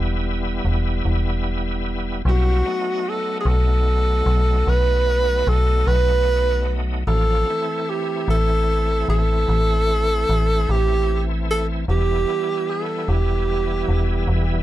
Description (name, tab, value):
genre	slow blues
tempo	50 BPM (dotted quarters)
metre	12/8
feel	straight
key	E minor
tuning	A4 = 440 Hz
part	bright tonewheel organ	sustained chords	0.0-14.6 s	E3 to F4	-27 LUFS	equal	slow rotary speaker, overdrive, chorus vibrato
part	metallic FM bass	bass	0.0-14.6 s	E1 to B1	-20 LUFS	equal	none
part	breathy tenor saxophone	melody	2.3-14.6 s	F#4 to B4	-22 LUFS	right 2 dB	none
room	little or no reverb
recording	dark, warm production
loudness	-18 LUFS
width	side -14 dB against mid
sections	0.0-14.6 A section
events	none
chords	0.0 Em; 2.3 B7; 7.1 Am; 11.9 Em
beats	1.05 | 2.26 3.47 4.67 5.88 | 7.08 8.28 9.48 10.69 | 11.89 13.09 14.29